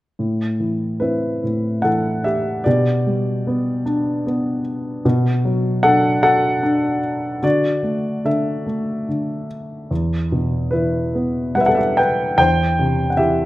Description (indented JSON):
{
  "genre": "classical, lyrical solo piano",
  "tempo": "74 BPM",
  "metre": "3/4",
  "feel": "rubato",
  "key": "A dorian",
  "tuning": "A4 = 440 Hz",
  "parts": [
    { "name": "dark grand piano", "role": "solo", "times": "0.2-13.5 s", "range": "E2 to G5", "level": "-17 LUFS", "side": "equal", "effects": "none" }
  ],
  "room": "moderate recital hall reverb, RT60 1.4 s",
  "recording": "none",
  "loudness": "-17 LUFS",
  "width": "side -16 dB against mid",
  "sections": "0.2-13.5 A section",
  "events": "none",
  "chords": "0.2 Amadd9; 2.7 G/B; 5.0 Bm7; 7.4 Dadd9; 9.9 Em; 12.4 C/E"
}